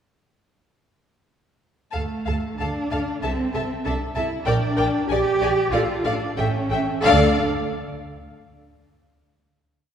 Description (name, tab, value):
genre	quick classical-period movement for string orchestra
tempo	87-99 BPM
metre	2/4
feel	rubato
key	D minor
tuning	A4 = 439 Hz
part	rich studio violin section	melody	1.9-7.4 s	F5 to A5	-26 LUFS	left 4 dB	none
part	rich studio violin section	second line	1.9-7.4 s	D5 to F5	-29 LUFS	left 4 dB	none
part	rich studio viola section	accompaniment	1.9-7.4 s	Ab4 to Bb4	-28 LUFS	right 2 dB	none
part	rich studio cello section	bass	1.9-7.4 s	A3 to G4	-25 LUFS	right 2 dB	none
part	rich studio double bass section	bass	1.9-7.4 s	A1 to D2	-26 LUFS	right 2 dB	none
room	wet scoring stage reverb, RT60 2.0 s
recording	heard from further back in the room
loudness	-20 LUFS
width	side -8 dB against mid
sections	1.9-7.0 A section; 7.0-8.3 final chord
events	none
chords	1.9 D5; 3.2 Am/C; 4.5 Gm/Bb; 5.1 Bb7; 5.7 Dm; 6.4 A7; 7.0 Dm